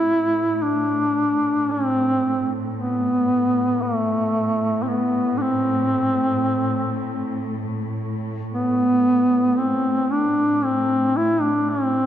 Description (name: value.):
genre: caucasian folk, Caucasian lament.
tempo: 58 BPM.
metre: 4/4.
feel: rubato.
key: A minor.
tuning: A4 = 441 Hz.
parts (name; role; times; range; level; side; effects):
mellow duduk; melody; 0.0-12.1 s; A3 to E4; -19 LUFS; equal; none.
dark studio cello section; drone; 0.0-12.1 s; A2; -28 LUFS; equal; none.
room: moderate church reverb, RT60 3.0 s.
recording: dark, warm production, nothing above 8.0 kHz.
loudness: -19 LUFS.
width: side -10 dB against mid.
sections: 0.0-12.1 A section.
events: none.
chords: none.